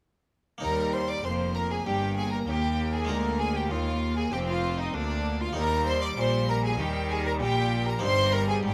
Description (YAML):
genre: classical, baroque-style concerto movement with solo episodes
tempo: 97 BPM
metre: 4/4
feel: straight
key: Eb major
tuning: A4 = 441 Hz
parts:
  - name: rich chamber violin section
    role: melody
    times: 0.6-8.7 s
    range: D5 to D6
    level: -36 LUFS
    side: equal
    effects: none
  - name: warm violin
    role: melody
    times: 0.6-8.7 s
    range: D4 to D5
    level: -33 LUFS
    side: equal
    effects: none
  - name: clear chamber violin section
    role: second line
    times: 0.6-8.7 s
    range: D4 to D5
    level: -38 LUFS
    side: equal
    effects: none
  - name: harpsichord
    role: accompaniment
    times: 0.6-8.7 s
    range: D2 to F4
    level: -40 LUFS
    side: equal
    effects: none
  - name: rich chamber viola section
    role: accompaniment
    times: 0.6-8.7 s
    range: G3 to C4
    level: -36 LUFS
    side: equal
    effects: none
  - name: clear chamber cello section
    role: bass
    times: 0.6-8.7 s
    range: D2 to Eb3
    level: -36 LUFS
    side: equal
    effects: none
  - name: rich chamber double bass section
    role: bass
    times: 0.6-8.7 s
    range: F1 to Eb2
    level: -34 LUFS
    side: equal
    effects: none
room: light reverb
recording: close, detailed microphones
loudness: -27 LUFS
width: mono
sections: 0.6-8.7 A section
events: none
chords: 0.6 Eb; 3.1 Bb7/D; 5.6 Eb; 8.0 Eb/G